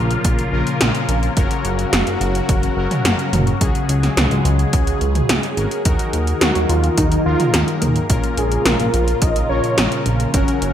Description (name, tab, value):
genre	synthwave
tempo	107 BPM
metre	4/4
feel	straight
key	unclear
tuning	A4 = 440 Hz
part	phased analog pad	sustained chords	0.0-10.7 s	Db3 to Ab4	-23 LUFS	equal	phaser, chorus, sidechain pumping
part	analog synth brass	stabs	0.0-10.7 s	Bb2 to Bb4	-24 LUFS	left 4 dB	chorus, cassette tape, ping-pong delay
part	chorused synth bass	bass	0.0-10.7 s	Gb1 to Eb2	-20 LUFS	equal	sidechain pumping
part	80s electronic pad drums	drums	0.1-10.7 s	hi-hat, snare drum, toms	-20 LUFS	right 1 dB	gated reverb on snare and toms
part	electronic kick drum	drums	0.2-10.5 s	none	-19 LUFS	equal	none
part	wide unison lead	melody	6.4-10.7 s	Db4 to Eb5	-21 LUFS	right 1 dB	ping-pong delay
room	moderate plate reverb, RT60 2.2 s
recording	bright 1980s-style digital production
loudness	-15 LUFS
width	side -10 dB against mid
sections	0.0-10.7 A section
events	none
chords	0.0 Bbm; 1.4 Gb; 3.6 Dbsus4; 5.9 Ebm; 8.1 Bbm